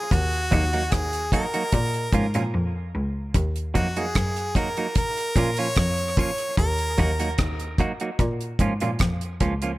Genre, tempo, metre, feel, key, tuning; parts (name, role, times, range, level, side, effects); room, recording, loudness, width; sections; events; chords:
dub reggae; 74 BPM; 4/4; straight; Eb minor; A4 = 440 Hz
bright harmonica; melody; 0.0-7.3 s; Gb4 to Db5; -28 LUFS; equal; dub echo
bright cello; bass; 0.1-9.8 s; Db2 to Bb2; -26 LUFS; equal
deep reggae drum kit; drums; 0.1-9.8 s; hi-hat, kick drum, rim click; -24 LUFS; equal
semi-hollow electric guitar; accompaniment; 0.5-9.7 s; F3 to Gb4; -29 LUFS; right 3 dB; dub echo
light reverb, small room ambience; -21 LUFS; side -18 dB against mid
0.0-3.3 A section; 3.3-9.8 B section
break 2.5-3.3
0.1 Ebm; 1.7 Bbm; 3.3 Ebm; 5.0 Bbm; 6.6 Ebm; 8.2 Bbm